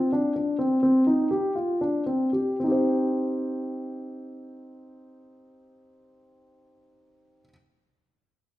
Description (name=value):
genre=contemporary instrumental, contemporary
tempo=112-133 BPM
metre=7/4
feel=straight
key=C minor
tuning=A4 = 439 Hz
part: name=dark baby grand piano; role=arpeggios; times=0.0-7.5 s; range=C4 to C5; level=-23 LUFS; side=equal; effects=none
room=wet recital hall reverb, RT60 1.5 s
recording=none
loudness=-22 LUFS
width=side -15 dB against mid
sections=0.0-2.6 A section; 2.6-6.3 B section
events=slowing down 0.0-2.6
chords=0.0 G5; 2.6 Cm